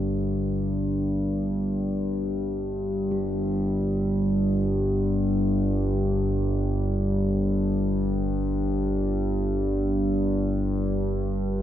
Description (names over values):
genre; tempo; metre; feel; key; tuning
dark ambient drone; free time; none; none; unclear; A4 = 437 Hz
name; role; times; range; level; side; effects
analog drone; drone; 0.0-11.6 s; G1 to G2; -23 LUFS; equal; chorus
bronze singing bowl; texture; 3.1-11.6 s; G3 to G4; -33 LUFS; right 1 dB; none
room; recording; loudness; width
wet plate reverb, RT60 3.6 s; dreamy mix soaked in reverb; -23 LUFS; side -11 dB against mid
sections
0.0-11.6 A section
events
none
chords
none